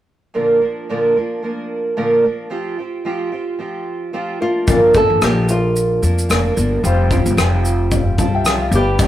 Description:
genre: acoustic pop.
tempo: 111 BPM.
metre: 4/4.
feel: swing 55% on 16ths.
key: unclear.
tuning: A4 = 438 Hz.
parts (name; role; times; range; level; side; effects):
fingerpicked twelve-string acoustic guitar; accompaniment; 0.3-9.1 s; G2 to Bb4; -18 LUFS; right 2 dB; none.
flamenco guitar; melody; 4.4-9.1 s; F4 to A4; -18 LUFS; equal; none.
bright upright piano; accompaniment; 4.7-9.1 s; G3 to A5; -24 LUFS; left 4 dB; none.
upright bass; bass; 4.7-9.1 s; F1 to F2; -17 LUFS; left 1 dB; none.
natural country drum kit; drums; 4.7-9.1 s; kick drum, rim click, shaker; -18 LUFS; left 1 dB; none.
room: light reverb.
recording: rough rehearsal-room recording, warm saturation.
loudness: -15 LUFS.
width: side -12 dB against mid.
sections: 0.3-4.7 A section; 4.7-9.1 B section.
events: none.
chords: 0.3 Bb; 2.5 Fsus2; 4.4 Bb; 6.8 Fsus2.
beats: | 0.34 0.89 1.43 1.97 | 2.51 3.05 3.60 4.14 | 4.68 5.22 5.76 6.30 | 6.84 7.38 7.91 8.45 | 8.99.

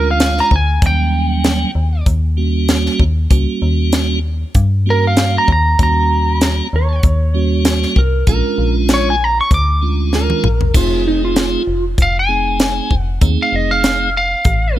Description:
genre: straight-eighth soul blues.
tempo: 97 BPM.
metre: 4/4.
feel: swing 55% on 16ths.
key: unclear.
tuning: A4 = 440 Hz.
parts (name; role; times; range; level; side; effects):
lightly driven lead guitar; melody; 0.0-14.8 s; Bb4 to D6; -17 LUFS; equal; none.
tonewheel organ; accompaniment; 0.0-14.8 s; F#3 to G#4; -20 LUFS; right 6 dB; slow rotary speaker, overdrive.
metallic FM bass; bass; 0.0-14.8 s; F1 to G2; -16 LUFS; equal; none.
tight funk drum kit; drums; 0.2-14.6 s; crash cymbal, hi-hat, kick drum, snare drum, toms; -16 LUFS; left 1 dB; none.
clean lap steel guitar; second line; 6.8-11.8 s; Eb4 to Db5; -20 LUFS; right 1 dB; none.
room: little or no reverb.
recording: none.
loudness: -12 LUFS.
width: side -13 dB against mid.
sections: 0.0-14.8 A section.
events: drum fill 10.1-10.7.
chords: 0.0 Bb7#9 (rootless); 0.8 Eb7#9; 8.3 Bb7#9; 10.7 F7#9.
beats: 0.20 | 0.82 1.45 2.07 2.69 | 3.31 3.93 4.55 5.17 | 5.79 6.41 7.03 7.65 | 8.27 8.89 9.51 10.13 | 10.74 11.36 11.98 12.60 | 13.22 13.83 14.45.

